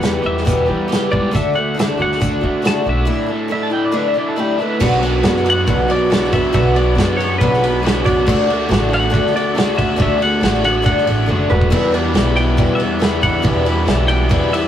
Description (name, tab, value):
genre	folk rock and heartland rock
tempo	139 BPM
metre	4/4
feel	straight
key	E minor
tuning	A4 = 438 Hz
part	twelve-string electric guitar	melody	0.0-14.7 s	B4 to A5	-22 LUFS	left 1 dB	none
part	picked twelve-string acoustic guitar	accompaniment	0.0-14.7 s	E2 to G4	-19 LUFS	left 1 dB	none
part	crunchy overdriven guitar	riff	0.0-14.7 s	E2 to G4	-21 LUFS	equal	none
part	upright bass	bass	0.0-14.7 s	E1 to E3	-20 LUFS	equal	none
part	loose indie drum kit	drums	0.0-14.6 s	crash cymbal, hi-hat, kick drum, ride cymbal, snare drum, toms	-19 LUFS	equal	none
part	pedal steel guitar	second line	3.5-4.8, 8.1-8.8, 11.5-12.3 s	G4 to A5	-24 LUFS	right 3 dB	none
room	wet booth ambience, RT60 0.2 s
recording	rough rehearsal-room recording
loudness	-13 LUFS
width	side -10 dB against mid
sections	0.0-4.8 A section; 4.8-14.7 B section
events	drum fill 11.3-11.7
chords	0.0 Em; 1.3 D; 3.1 Asus4; 4.8 Bm; 8.3 D; 11.7 Em7